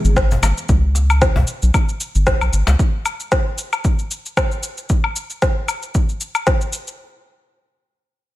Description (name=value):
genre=organic downtempo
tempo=114 BPM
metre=4/4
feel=swing 55% on 16ths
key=C# minor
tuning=A4 = 438 Hz
part: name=airy breathy pad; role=sustained chords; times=0.0-0.7 s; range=E3 to G#4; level=-28 LUFS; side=equal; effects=chorus, sidechain pumping
part: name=round analog bass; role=bass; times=0.0-2.8 s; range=G#1 to C#2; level=-15 LUFS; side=equal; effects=sidechain pumping
part: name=electronic cabasa, snare drum and woodblock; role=drums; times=0.0-7.0 s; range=none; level=-21 LUFS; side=left 1 dB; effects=studio reverb
part: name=electronic kick drum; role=drums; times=0.2-6.6 s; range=none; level=-18 LUFS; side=equal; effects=studio reverb
part: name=cajon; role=percussion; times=0.3-2.8 s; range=none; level=-25 LUFS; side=left 3 dB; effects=none
room=digital ambience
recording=none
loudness=-16 LUFS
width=side -16 dB against mid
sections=0.0-7.0 A section; 7.0-8.4 B section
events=filter sweep on analog synth bass 0.0-2.8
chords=0.0 C#m7; 2.8 N.C.